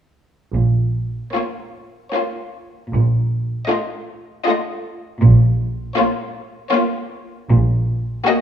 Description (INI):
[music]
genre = classical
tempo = 78 BPM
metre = 3/4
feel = rubato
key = Bb minor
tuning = A4 = 439 Hz
[part]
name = rich chamber cello section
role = bass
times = 0.6-8.1 s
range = Bb2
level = -17 LUFS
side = right 1 dB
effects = none
[part]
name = rich chamber double bass section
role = bass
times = 0.6-8.1 s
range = Bb1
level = -18 LUFS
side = right 2 dB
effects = none
[part]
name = rich chamber violin section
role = melody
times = 1.3-8.4 s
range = Db5 to Eb5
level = -25 LUFS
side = left 6 dB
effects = none
[part]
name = warm studio violin section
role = second line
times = 1.3-8.4 s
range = F4 to Gb4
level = -22 LUFS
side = left 2 dB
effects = none
[part]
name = rich chamber viola section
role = accompaniment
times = 1.4-8.4 s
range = A3 to Bb3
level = -24 LUFS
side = equal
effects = none
[sound]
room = moderate recital hall reverb, RT60 1.7 s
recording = none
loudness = -17 LUFS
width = side -9 dB against mid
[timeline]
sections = 0.6-8.4 A section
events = none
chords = 0.6 Bbm; 2.9 F7/Bb; 5.2 Bbm